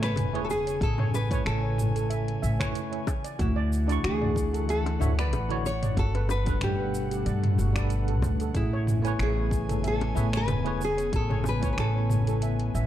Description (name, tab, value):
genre	sunset chillout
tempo	93 BPM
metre	4/4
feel	swing 55% on 16ths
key	A major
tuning	A4 = 440 Hz
part	nylon-string guitar	melody	0.0-12.9 s	E4 to C#5	-32 LUFS	equal	ping-pong delay
part	airy breathy pad	sustained chords	0.0-12.9 s	B2 to G#5	-35 LUFS	left 1 dB	chorus
part	steel pan	arpeggios	0.0-12.9 s	F#4 to E5	-38 LUFS	right 2 dB	ping-pong delay
part	upright bass	bass	0.0-12.9 s	E1 to G2	-27 LUFS	equal	none
part	deep house drum kit	drums	0.0-12.9 s	cabasa, finger snaps, hi-hat, toms	-33 LUFS	equal	overdrive
part	bongos	percussion	0.2-11.6 s	none	-38 LUFS	left 8 dB	none
part	bell-like tine electric piano	accompaniment	0.3-12.9 s	D3 to C#6	-35 LUFS	moving between left 4 dB and right 6 dB	fast stereo tremolo, auto-pan
part	electronic kick drum	drums	0.8-11.7 s	none	-30 LUFS	equal	overdrive
room	light reverb, small room ambience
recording	dark, warm production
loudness	-24 LUFS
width	side -12 dB against mid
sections	0.0-12.9 A section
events	none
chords	0.0 Amaj9; 3.1 Dmaj9; 6.0 Gmaj9; 8.6 Amaj9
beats	0.17 | 0.81 1.46 2.10 2.75 | 3.39 4.04 4.68 5.33 | 5.97 6.62 7.26 7.91 | 8.55 9.20 9.84 10.49 | 11.13 11.78 12.42